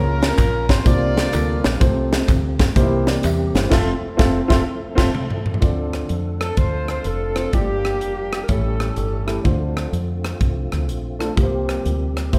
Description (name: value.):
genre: uptempo gospel.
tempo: 126 BPM.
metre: 4/4.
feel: swing 65% on 8ths.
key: unclear.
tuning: A4 = 442 Hz.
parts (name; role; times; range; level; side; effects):
clear horn section; melody; 0.0-1.8, 6.4-9.4 s; Bb3 to D5; -29 LUFS; equal; none.
dark baby grand piano; accompaniment; 0.0-12.4 s; G2 to E5; -26 LUFS; equal; none.
tonewheel organ; sustained chords; 0.0-12.4 s; D3 to A4; -33 LUFS; equal; slow rotary speaker, chorus vibrato.
deep dub fingered electric bass; bass; 0.0-12.4 s; F1 to F2; -26 LUFS; equal; none.
crisp fusion drum kit; drums; 0.2-12.4 s; crash cymbal, hi-hat, kick drum, rim click, snare drum, toms; -22 LUFS; equal; none.
tambourine and handclaps; percussion; 0.2-3.6 s; none; -40 LUFS; equal; none.
clean electric guitar; second line; 3.7-5.1 s; A3 to F4; -32 LUFS; equal; none.
warm alto saxophone; melody; 6.4-9.3 s; G4 to C5; -30 LUFS; equal; none.
room: light reverb.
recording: none.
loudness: -20 LUFS.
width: mono.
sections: 0.0-5.6 A section; 5.6-12.4 B section.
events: drum fill 3.7-5.6; band accent 3.7-5.6.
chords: 0.0 Bbm/Db; 0.9 C9sus4; 1.8 F/C; 2.8 C7; 3.7 Fmaj7; 5.6 Dm7; 7.5 Gm7; 8.5 A7; 9.5 Dm7; 11.4 C7sus4.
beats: 0.38 0.86 1.33 | 1.81 2.29 2.76 3.24 | 3.71 4.19 4.67 5.14 | 5.62 6.10 6.58 7.05 | 7.53 8.01 8.49 8.97 | 9.45 9.93 10.41 10.89 | 11.37 11.85 12.33.